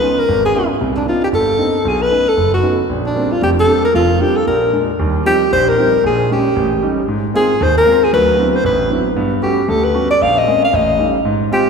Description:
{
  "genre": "jazz",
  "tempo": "230 BPM",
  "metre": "4/4",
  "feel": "swing 58% on 8ths",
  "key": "Bb major",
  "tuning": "A4 = 440 Hz",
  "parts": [
    { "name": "warm alto saxophone", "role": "melody", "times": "0.0-11.7 s", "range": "D4 to F5", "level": "-14 LUFS", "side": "left 1 dB", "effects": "none" },
    { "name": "clear concert grand piano", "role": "accompaniment", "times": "0.0-11.7 s", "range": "F1 to F#4", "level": "-17 LUFS", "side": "right 1 dB", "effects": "none" }
  ],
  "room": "wet concert hall reverb, RT60 2.3 s",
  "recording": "recorded in a church or concert hall",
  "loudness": "-12 LUFS",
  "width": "side -5 dB against mid",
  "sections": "0.0-5.0 A section; 5.0-11.7 B section",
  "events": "none",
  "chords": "0.0 Db9; 0.8 Cm9; 1.8 B9; 2.9 Bb69; 4.5 Bb7; 5.0 Eb69; 6.0 Bbm7; 6.6 A7#11; 7.1 Ab69; 8.1 D13; 9.2 Gmaj9#11; 10.2 Bbm9; 10.7 A7#11",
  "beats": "0.01 0.28 0.54 | 0.80 1.06 1.32 1.58 | 1.85 2.11 2.37 2.63 | 2.89 3.15 3.42 3.68 | 3.94 4.20 4.46 4.72 | 4.99 5.25 5.51 5.77 | 6.03 6.29 6.55 6.82 | 7.08 7.34 7.60 7.86 | 8.12 8.38 8.64 8.90 | 9.17 9.43 9.69 9.95 | 10.21 10.47 10.73 10.99 | 11.26 11.52"
}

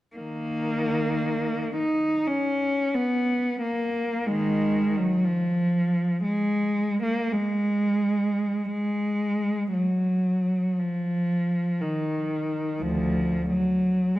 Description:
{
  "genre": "classical, free, expressive piece for unaccompanied cello",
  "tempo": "34-64 BPM",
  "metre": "4/4",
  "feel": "rubato",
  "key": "Eb minor",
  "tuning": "A4 = 439 Hz",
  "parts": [
    { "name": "rich cello", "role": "solo", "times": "0.2-14.2 s", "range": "D2 to Eb4", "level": "-23 LUFS", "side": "equal", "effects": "none" }
  ],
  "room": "moderate concert hall reverb, RT60 1.8 s",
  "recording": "dark, warm production",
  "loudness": "-23 LUFS",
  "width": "side -16 dB against mid",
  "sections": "0.2-8.7 A section; 8.7-14.2 B section",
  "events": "none",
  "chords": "none",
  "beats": "| 0.16 1.24 2.28 3.28 | 4.26 5.23 6.22 7.31 | 8.71 9.73 10.79 11.81 | 12.83 13.83"
}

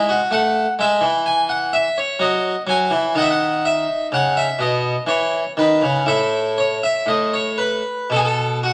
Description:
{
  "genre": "classical, baroque-style suite movement for harpsichord",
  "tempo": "55-64 BPM",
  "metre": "3/4",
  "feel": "rubato",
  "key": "unclear",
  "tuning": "A4 = 440 Hz",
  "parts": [
    { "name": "harpsichord", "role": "solo", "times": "0.0-8.7 s", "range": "A2 to G#5", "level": "-19 LUFS", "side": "equal", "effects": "none" }
  ],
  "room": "wet stone room reverb, RT60 1.1 s",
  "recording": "none",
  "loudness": "-19 LUFS",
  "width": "mono",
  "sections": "0.0-8.7 A section",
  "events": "none",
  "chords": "0.3 A5; 2.2 Emaj9; 3.1 Badd11; 5.1 C#m/E; 6.1 A5; 7.1 N.C.",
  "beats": "| 0.31 1.25 2.19 | 3.15 4.11 5.07 | 6.06 7.06 8.09"
}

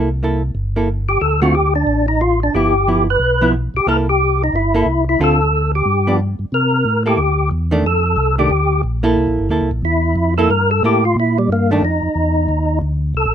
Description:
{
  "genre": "jazz",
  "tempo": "181 BPM",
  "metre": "4/4",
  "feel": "swing 62% on 8ths",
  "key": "C mixolydian",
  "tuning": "A4 = 439 Hz",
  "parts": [
    { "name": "hollow-body jazz guitar", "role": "accompaniment", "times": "0.0-11.8 s", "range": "D3 to A4", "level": "-18 LUFS", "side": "right 2 dB", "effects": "none" },
    { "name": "mellow tonewheel organ", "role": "bass", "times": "0.0-13.3 s", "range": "G1 to C3", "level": "-18 LUFS", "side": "equal", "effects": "overdrive, chorus vibrato, slow rotary speaker" },
    { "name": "percussive tonewheel organ", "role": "melody", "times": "1.1-13.3 s", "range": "G3 to B4", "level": "-16 LUFS", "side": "left 1 dB", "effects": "slow rotary speaker, overdrive, chorus vibrato" }
  ],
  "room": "light reverb",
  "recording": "minimal, uncompressed stereo recording",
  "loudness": "-14 LUFS",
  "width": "side -9 dB against mid",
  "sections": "0.0-6.5 A section; 6.5-13.3 B section",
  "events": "tonewheel organ solo 6.5-13.3",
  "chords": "0.0 C6; 1.2 Dm; 2.5 G6; 3.9 C6; 5.2 Dm7; 5.9 G7; 6.5 C13; 7.8 F69; 9.2 C13; 11.8 F13",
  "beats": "0.22 0.55 0.88 | 1.22 1.55 1.88 2.21 | 2.54 2.88 3.21 3.54 | 3.87 4.20 4.53 4.87 | 5.20 5.53 5.86 6.19 | 6.52 6.86 7.19 7.52 | 7.85 8.18 8.51 8.85 | 9.18 9.51 9.84 10.17 | 10.50 10.83 11.16 11.49 | 11.82 12.16 12.49 12.82 | 13.15"
}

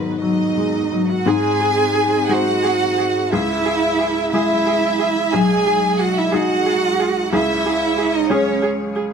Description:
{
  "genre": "neoclassical piano and strings",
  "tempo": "60 BPM (dotted quarters)",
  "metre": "6/8",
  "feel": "rubato",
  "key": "unclear",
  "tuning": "A4 = 440 Hz",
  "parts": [
    { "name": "clear chamber violin section", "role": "melody", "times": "0.0-8.6 s", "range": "B4 to G#5", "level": "-23 LUFS", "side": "left 2 dB", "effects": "none" },
    { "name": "rich cello", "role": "second line", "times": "0.0-8.6 s", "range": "F#3 to G#4", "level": "-19 LUFS", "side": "right 6 dB", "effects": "none" },
    { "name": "felt-muted upright piano", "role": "accompaniment", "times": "0.0-9.1 s", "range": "B1 to B#4", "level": "-21 LUFS", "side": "left 4 dB", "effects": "none" },
    { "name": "clear studio string section", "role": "sustained chords", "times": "0.0-9.1 s", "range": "G#3 to E5", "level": "-29 LUFS", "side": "equal", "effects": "none" },
    { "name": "clear viola", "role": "accompaniment", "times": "1.3-9.0 s", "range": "G#4", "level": "-26 LUFS", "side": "right 5 dB", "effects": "none" }
  ],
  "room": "light reverb",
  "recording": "dark, warm production",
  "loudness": "-16 LUFS",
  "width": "side -6 dB against mid",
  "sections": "0.0-1.3 A section; 1.3-9.1 B section",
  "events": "none",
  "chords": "0.0 G#m7; 1.3 G#; 3.3 C#m; 5.3 G#m/B; 7.3 C#m",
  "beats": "0.21 | 1.26 2.29 | 3.31 4.33 | 5.33 6.33 | 7.32 8.29"
}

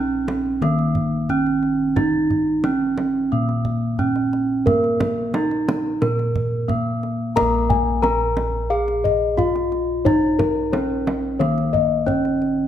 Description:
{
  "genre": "Javanese gamelan",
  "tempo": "89 BPM",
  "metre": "4/4",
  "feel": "straight",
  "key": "Bb slendro",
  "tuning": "A4 = 440 Hz",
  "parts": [
    { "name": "gamelan-type bronze metallophone", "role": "melody", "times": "0.0-12.7 s", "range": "Bb3 to Bb4", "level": "-21 LUFS", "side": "right 2 dB", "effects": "none" },
    { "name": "gamelan-type bossed gongs", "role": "bass", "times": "0.0-12.7 s", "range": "Bb1 to Bb4", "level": "-24 LUFS", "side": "left 1 dB", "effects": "none" },
    { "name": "kendang", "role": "percussion", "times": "0.3-12.5 s", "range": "none", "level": "-26 LUFS", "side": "right 2 dB", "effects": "none" },
    { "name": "gamelan-type bossed gongs", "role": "arpeggios", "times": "7.4-12.4 s", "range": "Bb4 to Bb5", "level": "-23 LUFS", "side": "left 8 dB", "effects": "none" }
  ],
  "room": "moderate recital hall reverb, RT60 1.5 s",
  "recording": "none",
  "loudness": "-18 LUFS",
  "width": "side -10 dB against mid",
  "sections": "0.0-12.7 A section",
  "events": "none",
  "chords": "none",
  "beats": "0.61 1.29 | 1.96 2.64 3.31 3.99 | 4.66 5.33 6.01 6.68 | 7.36 8.03 8.71 9.38 | 10.05 10.73 11.40 12.08"
}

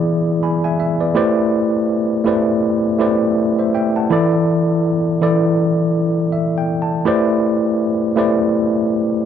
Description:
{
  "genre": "soul",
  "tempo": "81 BPM",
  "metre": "4/4",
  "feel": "swing 58% on 16ths",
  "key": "A minor",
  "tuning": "A4 = 443 Hz",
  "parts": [
    { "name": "tine electric piano", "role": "solo", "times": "0.0-9.3 s", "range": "E3 to B5", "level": "-15 LUFS", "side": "equal", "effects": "overdrive, fast stereo tremolo" }
  ],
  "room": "little or no reverb",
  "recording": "dry, close 1970s-style studio recording",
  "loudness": "-15 LUFS",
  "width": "side -8 dB against mid",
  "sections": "0.0-1.2 A section; 1.2-9.3 B section",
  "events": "tine electric piano fill 6.0-7.1",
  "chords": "0.0 E7; 1.2 Am11; 4.1 E7sus4; 7.1 Am11",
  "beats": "0.43 | 1.17 1.90 2.64 3.38 | 4.12 4.85 5.59 6.33 | 7.07 7.80 8.54"
}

